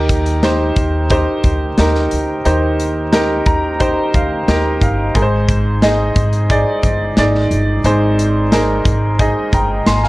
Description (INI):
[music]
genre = piano-driven pop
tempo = 89 BPM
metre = 4/4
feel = straight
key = Eb major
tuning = A4 = 440 Hz
[part]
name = warm upright piano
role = accompaniment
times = 0.0-10.1 s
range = Ab2 to C6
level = -16 LUFS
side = equal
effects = none
[part]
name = upright bass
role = bass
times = 0.0-10.1 s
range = G1 to Eb2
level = -18 LUFS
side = equal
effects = none
[part]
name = modern studio drum kit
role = drums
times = 0.1-10.1 s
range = hi-hat, kick drum, snare drum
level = -17 LUFS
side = equal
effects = none
[sound]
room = moderate studio reverb, RT60 0.8 s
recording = worn, warbling old tape, cassette tape, warbly pitch drift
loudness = -12 LUFS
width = side -19 dB against mid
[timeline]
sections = 0.0-10.1 A section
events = upright piano fill 3.1-5.1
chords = 0.0 Eb; 5.1 Ab